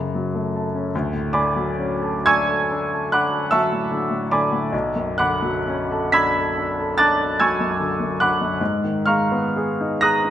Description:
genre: classical, impressionist solo piano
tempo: 40-51 BPM (dotted quarters)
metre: 9/8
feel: rubato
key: D lydian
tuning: A4 = 440 Hz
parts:
  - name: warm grand piano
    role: solo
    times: 0.0-10.3 s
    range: B1 to B6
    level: -18 LUFS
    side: equal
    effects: none
room: wet scoring stage reverb, RT60 1.6 s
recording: nothing above 10.5 kHz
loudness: -18 LUFS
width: side -11 dB against mid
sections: 0.0-10.3 A section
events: none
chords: 0.0 F#m7; 0.9 Dmaj7; 4.7 Bm9; 8.6 G#m6

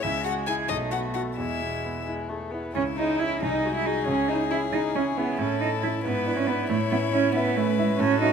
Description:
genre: quick classical-period movement for piano quartet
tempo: 91 BPM (dotted quarters)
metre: 6/8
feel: rubato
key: C# minor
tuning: A4 = 440 Hz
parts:
  - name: warm violin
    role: melody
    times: 0.0-8.3 s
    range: E4 to G#5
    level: -30 LUFS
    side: left 9 dB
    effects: none
  - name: warm cello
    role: second line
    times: 0.0-8.3 s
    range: G#3 to G#4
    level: -27 LUFS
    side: right 7 dB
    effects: none
  - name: warm violin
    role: second line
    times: 0.0-8.3 s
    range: G#3 to F#4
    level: -31 LUFS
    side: left 4 dB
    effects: none
  - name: bright concert grand piano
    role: accompaniment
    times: 0.0-8.3 s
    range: B1 to E5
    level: -29 LUFS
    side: equal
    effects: none
room: moderate recital hall reverb, RT60 1.5 s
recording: close, detailed microphones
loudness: -23 LUFS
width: side -7 dB against mid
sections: 0.0-2.8 A section; 2.8-8.3 B section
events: none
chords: 0.0 C#m; 0.7 B5; 1.4 E; 2.8 C#m; 3.4 G#7/B#; 4.1 C#m; 5.4 A; 6.1 E7/G#; 6.7 A

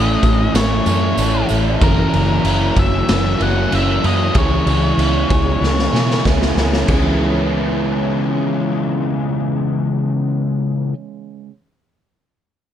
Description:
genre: rock, shoegaze and dream pop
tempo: 94 BPM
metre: 4/4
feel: straight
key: C# minor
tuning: A4 = 440 Hz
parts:
  - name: octave-fuzz lead guitar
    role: melody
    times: 0.0-6.2 s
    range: A#4 to F#5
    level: -23 LUFS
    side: left 2 dB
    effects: distortion, digital delay
  - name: fingerpicked twelve-string acoustic guitar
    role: arpeggios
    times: 0.0-10.9 s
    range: E3 to G#4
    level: -24 LUFS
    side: right 1 dB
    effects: lush chorus, digital delay
  - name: crunchy overdriven guitar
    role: riff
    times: 0.0-10.9 s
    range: C#3 to A#4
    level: -22 LUFS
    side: right 11 dB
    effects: reverse reverb
  - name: overdriven electric guitar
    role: riff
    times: 0.0-10.9 s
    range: F#2 to E4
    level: -21 LUFS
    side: left 8 dB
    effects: analog chorus
  - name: vintage muted fingered electric bass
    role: bass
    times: 0.0-10.9 s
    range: F#1 to B2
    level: -19 LUFS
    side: equal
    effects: none
  - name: raw garage drum kit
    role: drums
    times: 0.2-7.0 s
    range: crash cymbal, kick drum, snare drum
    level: -19 LUFS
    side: equal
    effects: none
  - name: tambourine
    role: percussion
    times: 0.2-1.6 s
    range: none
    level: -34 LUFS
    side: right 8 dB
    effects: none
room: light reverb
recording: dark, warm production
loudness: -14 LUFS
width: side -10 dB against mid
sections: 0.0-6.9 A section; 6.9-9.4 B section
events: drum fill 5.6-6.9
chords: 0.0 A; 1.8 F#7; 4.4 C#m7

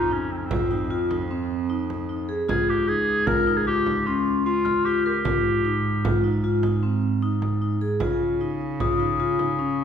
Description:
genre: contemporary instrumental, chamber music in an uneven meter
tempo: 152 BPM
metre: 7/4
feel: straight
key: unclear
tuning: A4 = 441 Hz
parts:
  - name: bright clarinet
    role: melody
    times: 0.0-6.2 s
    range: C4 to Bb4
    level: -25 LUFS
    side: right 1 dB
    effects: none
  - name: vibraphone with medium hard mallets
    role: arpeggios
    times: 0.0-9.8 s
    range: C4 to Bb4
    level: -25 LUFS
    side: left 3 dB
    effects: none
  - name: warm cello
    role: bass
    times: 0.0-9.8 s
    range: Db2 to Db3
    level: -27 LUFS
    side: right 2 dB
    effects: none
  - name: frame drum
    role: percussion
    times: 0.1-9.8 s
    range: none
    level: -30 LUFS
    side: right 3 dB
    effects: none
  - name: glockenspiel with rubber mallets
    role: texture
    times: 4.6-9.6 s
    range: Eb6 to F6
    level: -30 LUFS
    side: left 8 dB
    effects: none
room: wet recital hall reverb, RT60 1.5 s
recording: recorded in a church or concert hall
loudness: -21 LUFS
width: side -8 dB against mid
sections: 0.0-9.8 A section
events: none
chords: 0.0 F7(no3); 2.5 Dbadd9; 5.3 Abmaj7; 8.0 Dbadd9

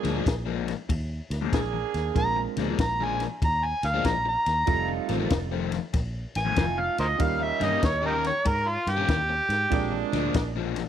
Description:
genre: electric blues shuffle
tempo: 95 BPM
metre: 4/4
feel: swing 66% on 8ths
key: Bb mixolydian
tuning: A4 = 440 Hz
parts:
  - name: overdriven semi-hollow guitar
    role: riff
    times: 0.0-10.8 s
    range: F2 to G4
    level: -31 LUFS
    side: left 10 dB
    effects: phaser
  - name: warm saxophone section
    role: stabs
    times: 0.0-10.5 s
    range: G3 to Ab4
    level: -33 LUFS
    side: right 12 dB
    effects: none
  - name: fingered electric bass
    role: bass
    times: 0.0-10.8 s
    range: F1 to Ab2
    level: -31 LUFS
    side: equal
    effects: none
  - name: compact cocktail drum kit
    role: drums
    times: 0.0-10.9 s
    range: kick drum, ride cymbal, snare drum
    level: -29 LUFS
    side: left 2 dB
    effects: none
  - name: warm concert grand piano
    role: accompaniment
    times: 2.1-10.1 s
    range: G3 to Bb4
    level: -32 LUFS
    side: right 14 dB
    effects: none
  - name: overdriven harmonica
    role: melody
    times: 2.2-10.1 s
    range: Eb4 to Bb5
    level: -26 LUFS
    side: equal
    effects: none
room: light reverb, small room reverb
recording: 1960s-style stereo with parts hard left and right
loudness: -24 LUFS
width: side -10 dB against mid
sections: 0.0-10.9 A section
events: harmonica solo 0.0-10.9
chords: 0.0 Bb7; 4.7 F7; 7.2 Eb7; 9.7 Bb7

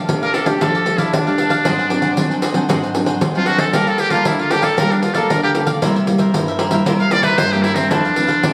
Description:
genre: samba and choro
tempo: 115 BPM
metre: 4/4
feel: straight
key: F major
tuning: A4 = 440 Hz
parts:
  - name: cavaquinho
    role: accompaniment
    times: 0.0-8.5 s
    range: D4 to Gb5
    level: -26 LUFS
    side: equal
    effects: none
  - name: nylon-string guitar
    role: accompaniment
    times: 0.0-8.5 s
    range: F2 to A4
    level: -22 LUFS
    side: equal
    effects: none
  - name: pandeiro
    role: percussion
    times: 0.1-8.5 s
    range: none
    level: -22 LUFS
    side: equal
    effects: none
  - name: trumpet with metal mute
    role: melody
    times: 0.2-8.5 s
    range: C4 to F5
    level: -20 LUFS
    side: equal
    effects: none
room: wet studio reverb, RT60 0.7 s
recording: recorded on a phone in the room, studio reverb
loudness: -16 LUFS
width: mono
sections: 0.0-8.5 A section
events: muted trumpet solo 0.0-8.5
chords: 0.0 F69; 1.6 Ab7#11; 3.7 Gm9; 5.8 C7; 7.9 Fmaj7

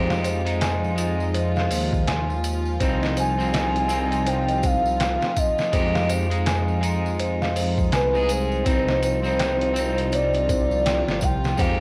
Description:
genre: trip hop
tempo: 82 BPM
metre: 4/4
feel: swing 60% on 16ths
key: C minor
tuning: A4 = 440 Hz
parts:
  - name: pure breathy sine lead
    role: melody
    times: 0.0-11.8 s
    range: B4 to Ab5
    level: -28 LUFS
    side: equal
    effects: lush chorus, cassette tape, dub echo
  - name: electric guitar at the edge of break-up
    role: accompaniment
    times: 0.0-11.8 s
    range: Ab3 to Ab4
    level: -30 LUFS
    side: equal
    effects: harmonic tremolo
  - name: warm chamber string section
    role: sustained chords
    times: 0.0-11.8 s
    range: F3 to F4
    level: -35 LUFS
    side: equal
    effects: vintage 12-bit sampler grit
  - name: small celesta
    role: arpeggios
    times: 0.0-11.8 s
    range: C5 to Ab5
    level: -34 LUFS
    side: equal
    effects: tape echo
  - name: dark detuned saw bass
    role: bass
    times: 0.0-11.8 s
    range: G1 to F2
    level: -28 LUFS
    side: equal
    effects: none
  - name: trip hop sampler-style drum kit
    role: drums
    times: 0.1-11.8 s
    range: hi-hat, kick drum, snare drum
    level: -29 LUFS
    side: equal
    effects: studio reverb
  - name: tambourine and triangle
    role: percussion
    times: 0.1-11.8 s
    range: none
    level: -44 LUFS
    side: equal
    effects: none
room: light reverb, small room ambience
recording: home recording on cassette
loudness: -22 LUFS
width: mono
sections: 0.0-11.8 A section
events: none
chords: 0.0 Fm7; 2.8 Cm; 5.7 Fm7; 8.7 Cmadd9

